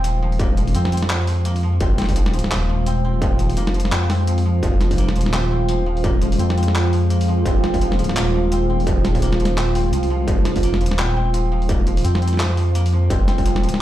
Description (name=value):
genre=half-time drum and bass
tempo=170 BPM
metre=4/4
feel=swing 59% on 16ths, half-time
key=F minor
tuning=A4 = 442 Hz
part: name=deep dark ambient pad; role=sustained chords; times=0.0-13.8 s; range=Ab3 to F5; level=-25 LUFS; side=right 1 dB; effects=chorus, built-in reverb, sidechain pumping
part: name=koto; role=arpeggios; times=0.0-13.8 s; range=F3 to C4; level=-28 LUFS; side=left 1 dB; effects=tape echo
part: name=dark detuned saw bass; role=bass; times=0.0-13.8 s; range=Eb1 to F2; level=-19 LUFS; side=equal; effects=none
part: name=boom bap sampler-style drum kit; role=drums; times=0.0-13.8 s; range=handclaps, hi-hat, snare drum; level=-26 LUFS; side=equal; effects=none
part: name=sub drop and swell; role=sound effects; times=0.0-0.4, 9.7-10.3 s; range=none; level=-33 LUFS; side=left 1 dB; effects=none
part: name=electronic kick drum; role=drums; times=0.4-13.4 s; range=none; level=-20 LUFS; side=equal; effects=distortion
room=light reverb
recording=played on a big sound system in a bare room, large studio reverb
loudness=-16 LUFS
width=side -13 dB against mid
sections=0.0-13.8 A section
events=impact 0.0-0.4; swell 9.7-10.3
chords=0.0 Fm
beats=0.04 | 0.40 0.75 1.10 1.46 | 1.81 2.16 2.52 2.87 | 3.22 3.57 3.93 4.28 | 4.63 4.99 5.34 5.69 | 6.04 6.40 6.75 7.10 | 7.46 7.81 8.16 8.52 | 8.87 9.22 9.57 9.93 | 10.28 10.63 10.98 11.34 | 11.69 12.04 12.40 12.75 | 13.10 13.46 13.81